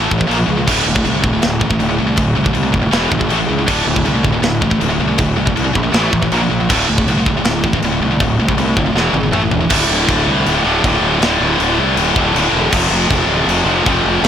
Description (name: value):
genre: heavy metal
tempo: 159 BPM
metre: 4/4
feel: straight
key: D minor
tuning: A4 = 441 Hz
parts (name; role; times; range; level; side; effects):
- heavy high-gain guitar; riff; 0.0-14.3 s; D2 to Bb3; -15 LUFS; equal; distortion
- fuzz fingered electric bass; bass; 0.0-14.3 s; D1 to C#2; -18 LUFS; equal; overdrive
- tight metal drum kit; drums; 0.1-14.3 s; china cymbal, crash cymbal, kick drum, snare drum, toms; -18 LUFS; left 1 dB; soft clipping on kick, soft clipping on snare
room: light reverb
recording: blown-out, overdriven recording, overdrive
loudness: -12 LUFS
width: side -9 dB against mid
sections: 0.0-9.7 A section; 9.7-14.3 B section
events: drum fill 9.0-9.7; half time 9.7-14.3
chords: 0.3 Bb5; 0.7 D5; 2.9 E5; 3.3 A5; 3.7 D5; 5.9 A5; 6.3 Bb5; 6.7 D5; 9.0 E5; 9.3 A5; 9.7 D5; 12.7 F5